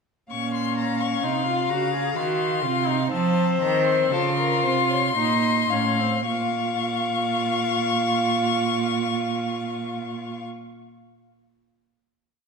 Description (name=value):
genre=classical, baroque-style fugue for string quartet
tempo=53-65 BPM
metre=3/4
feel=straight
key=Bb minor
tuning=A4 = 443 Hz
part: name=rich violin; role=melody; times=0.3-10.4 s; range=A5 to Db6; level=-26 LUFS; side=left 8 dB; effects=none
part: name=warm violin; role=second line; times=0.3-10.4 s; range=A4 to F5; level=-27 LUFS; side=left 6 dB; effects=none
part: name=rich viola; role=accompaniment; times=0.3-10.4 s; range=C4 to Ab4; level=-28 LUFS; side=right 2 dB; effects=none
part: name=rich cello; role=bass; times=0.3-10.4 s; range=A2 to F3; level=-26 LUFS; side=right 5 dB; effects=none
room=wet scoring stage reverb, RT60 1.8 s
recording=none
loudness=-21 LUFS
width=side -5 dB against mid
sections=0.3-6.3 exposition; 6.3-9.7 final chord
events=slowing down 0.3-8.0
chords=0.3 Bbm; 2.2 Cdim/Eb; 3.1 F7; 6.3 Bbm